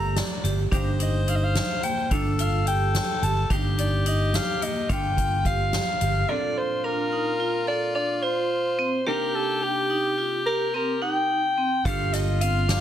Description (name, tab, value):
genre	progressive instrumental, band music in an uneven meter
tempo	216 BPM (eighths)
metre	5/8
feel	straight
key	unclear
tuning	A4 = 440 Hz
part	dark soprano saxophone	melody	0.0-12.8 s	G4 to Bb5	-26 LUFS	left 1 dB	plate reverb, digital delay
part	clear alto saxophone	second line	0.0-12.8 s	F4 to C5	-30 LUFS	left 1 dB	plate reverb, digital delay
part	vintage hollow-body jazz guitar	accompaniment	0.0-12.8 s	Bb2 to Bb4	-35 LUFS	right 1 dB	plate reverb
part	vibraphone with hard mallets	arpeggios	0.0-12.8 s	Bb3 to A4	-31 LUFS	right 3 dB	plate reverb, digital delay
part	fingered electric bass	bass	0.0-6.2, 11.9-12.8 s	G1	-24 LUFS	equal	none
part	soft-mallet drum kit	drums	0.2-6.1, 11.9-12.8 s	hi-hat, kick drum, snare drum	-29 LUFS	equal	none
room	light reverb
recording	dense, heavily limited modern master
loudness	-22 LUFS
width	side -10 dB against mid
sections	0.0-6.3 A section; 6.3-12.8 B section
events	none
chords	0.0 Gm9; 0.7 Cm9/G; 2.1 Gm9; 3.5 Ebmaj9/G; 4.9 Gm9; 6.3 Bbmaj7; 9.1 Cm7; 11.9 Gm7